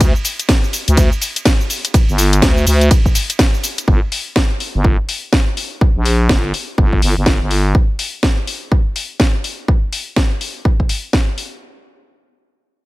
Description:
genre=bass house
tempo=124 BPM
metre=4/4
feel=swing 61% on 16ths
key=unclear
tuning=A4 = 439 Hz
part: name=growling FM bass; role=bass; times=0.0-7.7 s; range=G1 to D2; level=-14 LUFS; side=equal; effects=overdrive, sidechain pumping
part: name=electronic kick drum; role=drums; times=0.0-11.3 s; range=none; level=-14 LUFS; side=equal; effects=none
part: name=house drum kit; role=drums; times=0.0-11.5 s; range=hi-hat, ride cymbal, shaker, snare drum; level=-19 LUFS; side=equal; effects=none
room=little or no reverb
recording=none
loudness=-13 LUFS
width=side -19 dB against mid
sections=0.0-3.9 A section; 3.9-11.6 B section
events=drop 0.0-3.9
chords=none

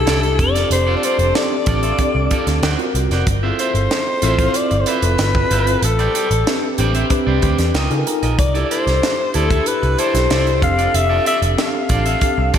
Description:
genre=polished 1980s jazz-funk pop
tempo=94 BPM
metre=4/4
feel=straight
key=unclear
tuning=A4 = 441 Hz
part: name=growling alto saxophone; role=melody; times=0.0-12.6 s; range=A4 to F5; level=-20 LUFS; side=left 2 dB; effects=slapback echo
part: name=mellow tine electric piano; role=accompaniment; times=0.0-12.6 s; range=C4 to Bb5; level=-22 LUFS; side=left 1 dB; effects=medium stereo tremolo, lush chorus, slapback echo
part: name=vintage muted picked electric bass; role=bass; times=0.0-12.5 s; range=F1 to Db3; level=-18 LUFS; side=equal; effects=none
part: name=electric guitar at the edge of break-up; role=riff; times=0.1-12.6 s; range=E4 to F5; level=-24 LUFS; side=right 4 dB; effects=wide subtle chorus, slapback echo
part: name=tight funk drum kit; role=drums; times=0.1-12.6 s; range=hi-hat, kick drum, snare drum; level=-21 LUFS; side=right 1 dB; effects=none
room=moderate lush hall reverb, RT60 1.9 s, small room ambience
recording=big arena sound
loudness=-14 LUFS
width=side -9 dB against mid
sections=0.0-12.6 A section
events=tine electric piano fill 7.4-8.4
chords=0.4 F6; 2.6 D7alt; 3.3 G13sus4; 5.8 Am11; 7.7 Db69; 8.4 C69; 10.6 F6

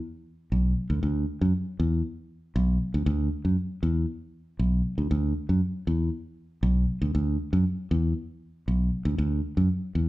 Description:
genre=funk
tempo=118 BPM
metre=4/4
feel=straight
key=B minor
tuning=A4 = 440 Hz
part: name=fingered electric bass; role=solo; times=0.5-10.1 s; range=B1 to F#2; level=-24 LUFS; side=equal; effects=none
room=wet large studio reverb, RT60 0.9 s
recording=band playing live in one room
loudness=-24 LUFS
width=side -17 dB against mid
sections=0.0-10.1 A section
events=none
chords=none

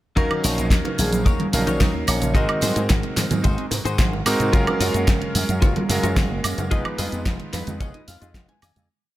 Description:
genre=nu-disco, nu disco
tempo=110 BPM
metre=4/4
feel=straight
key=Eb minor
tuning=A4 = 440 Hz
part: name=vibraphone with medium hard mallets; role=melody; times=0.2-2.8 s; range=Ab4 to Eb5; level=-30 LUFS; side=left 1 dB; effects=tape echo
part: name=warm electric grand piano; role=accompaniment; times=0.2-8.6 s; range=Gb3 to F5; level=-25 LUFS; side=right 1 dB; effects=tape echo
part: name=soft round pluck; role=arpeggios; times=0.2-8.8 s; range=C3 to F4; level=-31 LUFS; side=right 3 dB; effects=lush chorus, sidechain pumping, tape echo
part: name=direct-recorded clean electric guitar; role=riff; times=0.2-8.9 s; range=Eb4 to Ab5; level=-31 LUFS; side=left 3 dB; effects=analog chorus, tape echo
part: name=slap bass with an envelope filter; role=bass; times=0.2-8.9 s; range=F1 to Ab2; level=-25 LUFS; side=equal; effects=none
part: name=kick drum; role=drums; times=0.2-8.5 s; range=none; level=-22 LUFS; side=equal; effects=none
part: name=pop drum kit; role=drums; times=0.2-8.9 s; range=hi-hat, shaker, snare drum, woodblock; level=-26 LUFS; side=right 1 dB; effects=none
part: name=tambourine, bongos and congas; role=percussion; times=0.2-8.9 s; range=none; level=-30 LUFS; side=right 2 dB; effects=none
room=small room ambience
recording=none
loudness=-18 LUFS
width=side -15 dB against mid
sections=0.2-8.9 drop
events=drop 0.2-8.9; fade-out 6.0-8.9; clean electric guitar fill 7.3-8.9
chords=0.2 Ebm7; 2.4 Ab7; 4.5 Gbmaj7; 6.7 Fm7b5

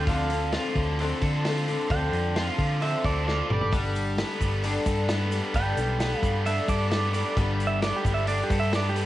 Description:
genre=folk rock and heartland rock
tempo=132 BPM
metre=4/4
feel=straight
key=unclear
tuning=A4 = 440 Hz
part: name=pedal steel guitar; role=second line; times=0.0-9.0 s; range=G4 to G5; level=-30 LUFS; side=right 4 dB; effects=cassette tape
part: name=picked twelve-string acoustic guitar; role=accompaniment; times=0.0-9.1 s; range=G2 to A4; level=-31 LUFS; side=left 4 dB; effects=cassette tape
part: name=cranked stack guitar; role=riff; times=0.0-9.1 s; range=D3 to A4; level=-30 LUFS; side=right 1 dB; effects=overdrive, cassette tape
part: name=hollow-body short-scale picked electric bass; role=bass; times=0.0-9.0 s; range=G1 to D3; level=-28 LUFS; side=equal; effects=none
part: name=vintage drum kit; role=drums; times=0.1-9.1 s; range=hi-hat, kick drum, snare drum, toms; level=-31 LUFS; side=equal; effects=none
part: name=egg shaker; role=percussion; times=3.7-9.1 s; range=none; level=-51 LUFS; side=right 6 dB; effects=none
room=light reverb, small room ambience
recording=home recording on cassette, nothing above 10.6 kHz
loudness=-23 LUFS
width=side -14 dB against mid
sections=0.0-9.1 A section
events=pedal steel guitar solo 0.0-9.1; drum fill 3.3-3.7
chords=0.0 Dm7; 3.5 Gadd9

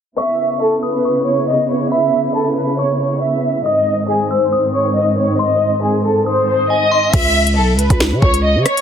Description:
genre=hip hop, drill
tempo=138 BPM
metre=4/4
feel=half-time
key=C# minor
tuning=A4 = 442 Hz
part: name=warm symphonic violin section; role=melody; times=0.2-8.8 s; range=G#4 to E5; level=-15 LUFS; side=equal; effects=low-pass filter, ping-pong delay
part: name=glassy synth bell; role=second line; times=0.2-7.1 s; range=G#5 to E6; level=-26 LUFS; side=left 3 dB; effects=chorus, phaser, ping-pong delay
part: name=warm symphonic string section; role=sustained chords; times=0.2-7.1 s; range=G#2 to E4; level=-19 LUFS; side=right 1 dB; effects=none
part: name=growling 808-style bass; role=bass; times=7.1-8.7 s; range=B1 to C#3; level=-15 LUFS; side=equal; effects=none
part: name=drill drum kit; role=drums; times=7.1-8.8 s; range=crash cymbal, finger snaps, hi-hat, kick drum, rim click, snare drum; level=-16 LUFS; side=equal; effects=none
room=light reverb, digital ambience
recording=dense, heavily limited modern master, low-pass filter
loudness=-13 LUFS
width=side -8 dB against mid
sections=0.2-7.1 A section; 7.1-8.8 B section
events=filter sweep 0.2-7.1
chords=0.2 C#m7; 3.7 G#; 7.1 C#m7

